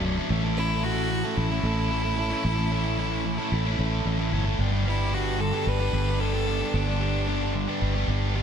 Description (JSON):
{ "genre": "post-rock", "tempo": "112 BPM", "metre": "4/4", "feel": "straight", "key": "unclear", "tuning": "A4 = 442 Hz", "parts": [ { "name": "overdriven electric guitar", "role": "riff", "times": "0.0-8.4 s", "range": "B1 to A4", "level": "-27 LUFS", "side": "equal", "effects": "none" }, { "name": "fingered electric bass", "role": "bass", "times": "0.0-8.4 s", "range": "B0 to A1", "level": "-26 LUFS", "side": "equal", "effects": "none" }, { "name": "bright violin", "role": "melody", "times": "0.6-7.8 s", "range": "D4 to B4", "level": "-31 LUFS", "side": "equal", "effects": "tape echo" } ], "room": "light reverb", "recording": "none", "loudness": "-23 LUFS", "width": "side -8 dB against mid", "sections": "0.0-8.4 A section", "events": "none", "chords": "0.3 A; 4.6 Gadd9" }